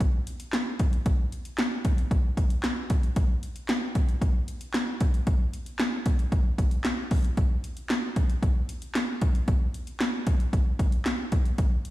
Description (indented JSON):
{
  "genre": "pop",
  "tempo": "114 BPM",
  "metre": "4/4",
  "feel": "straight",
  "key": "none",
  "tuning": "none",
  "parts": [
    { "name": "punchy analog drum machine", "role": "drums", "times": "0.0-11.9 s", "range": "handclaps, hi-hat, kick drum, snare drum", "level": "-24 LUFS", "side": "equal", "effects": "overdrive" }
  ],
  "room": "moderate lush hall reverb, RT60 1.9 s",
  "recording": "played on a big sound system in a bare room, stone room reverb",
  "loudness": "-24 LUFS",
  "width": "side -16 dB against mid",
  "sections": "0.0-11.9 A section",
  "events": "none",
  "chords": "none"
}